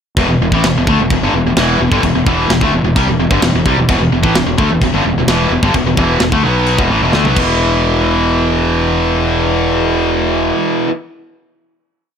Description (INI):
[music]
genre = heavy metal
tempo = 129 BPM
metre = 4/4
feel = straight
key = E minor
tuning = A4 = 440 Hz
[part]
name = tight distorted guitar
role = riff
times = 0.2-10.9 s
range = E2 to B3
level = -13 LUFS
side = equal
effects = distortion
[part]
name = fuzz fingered electric bass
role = bass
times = 0.2-10.5 s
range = E1 to D2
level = -17 LUFS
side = equal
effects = overdrive
[part]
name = tight metal drum kit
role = drums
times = 0.2-7.5 s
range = china cymbal, crash cymbal, kick drum, snare drum, toms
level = -18 LUFS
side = equal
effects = none
[sound]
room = small room ambience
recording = none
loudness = -11 LUFS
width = side -7 dB against mid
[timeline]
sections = 0.2-7.6 riff; 7.6-11.3 final hit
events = drum fill 7.1-7.6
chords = 0.2 Em; 7.4 E5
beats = | 0.17 0.64 1.10 1.57 | 2.03 2.50 2.96 3.43 | 3.89 4.35 4.82 5.28 | 5.74 6.21 6.67 7.13 | 7.60 8.06 8.53 8.99 | 9.46 9.92 10.39 10.86